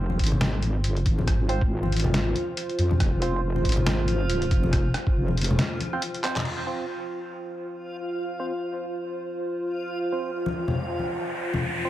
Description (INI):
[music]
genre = deep dubstep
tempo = 139 BPM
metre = 4/4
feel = swing 57% on 16ths, half-time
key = F minor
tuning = A4 = 440 Hz
[part]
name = dark analog pad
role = sustained chords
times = 0.4-11.9 s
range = F4 to C5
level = -32 LUFS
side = left 1 dB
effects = chorus
[part]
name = wobble bass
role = bass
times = 0.0-5.6 s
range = F1 to F2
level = -25 LUFS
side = equal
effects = chorus
[part]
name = backwards swelling texture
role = texture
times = 1.9-11.9 s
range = F4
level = -36 LUFS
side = right 4 dB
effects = built-in reverb
[part]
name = congas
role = percussion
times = 0.1-6.4, 10.5-11.6 s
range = none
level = -30 LUFS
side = left 2 dB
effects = none
[part]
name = electronic kick drum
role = drums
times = 0.2-5.1 s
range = none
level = -24 LUFS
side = equal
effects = none
[part]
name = trip hop sampler-style drum kit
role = drums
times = 0.2-6.6 s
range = crash cymbal, handclaps, hi-hat, rim click, snare drum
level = -30 LUFS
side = equal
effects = none
[part]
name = percussive organ stab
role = stabs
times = 1.5-11.9 s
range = C4 to C5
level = -35 LUFS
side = right 3 dB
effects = chorus, dub echo
[part]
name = riser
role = sound effects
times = 10.3-11.9 s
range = none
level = -33 LUFS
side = right 1 dB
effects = none
[sound]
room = light reverb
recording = none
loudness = -23 LUFS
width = side -13 dB against mid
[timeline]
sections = 0.0-6.5 A section; 6.5-11.9 B section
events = break 5.6-6.5; drum fill 6.2; band accent 6.3; riser 10.3-11.9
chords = 0.0 F5